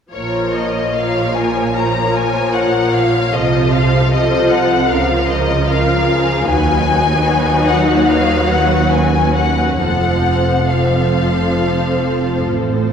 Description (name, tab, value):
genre	classical, slow romantic movement for string orchestra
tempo	67-80 BPM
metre	4/4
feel	rubato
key	Bb minor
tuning	A4 = 439 Hz
part	warm symphonic violin section	melody	0.1-12.5 s	Db5 to Bb5	-18 LUFS	left 4 dB	none
part	warm symphonic violin section	second line	0.1-12.9 s	F#4 to Db5	-21 LUFS	left 2 dB	none
part	warm symphonic viola section	accompaniment	0.1-12.9 s	F3 to F4	-18 LUFS	equal	none
part	clear symphonic double bass section	bass	0.1-12.9 s	F1 to D#2	-20 LUFS	right 2 dB	none
part	rich symphonic cello section	bass	0.1-12.9 s	D#2 to Db3	-21 LUFS	right 3 dB	none
room	wet concert hall reverb, RT60 2.0 s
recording	heard from further back in the room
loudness	-12 LUFS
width	side -7 dB against mid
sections	0.1-12.9 A section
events	none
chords	0.1 Bbm; 3.4 F/C; 4.9 Bbm/Db; 6.5 B/D#; 9.8 F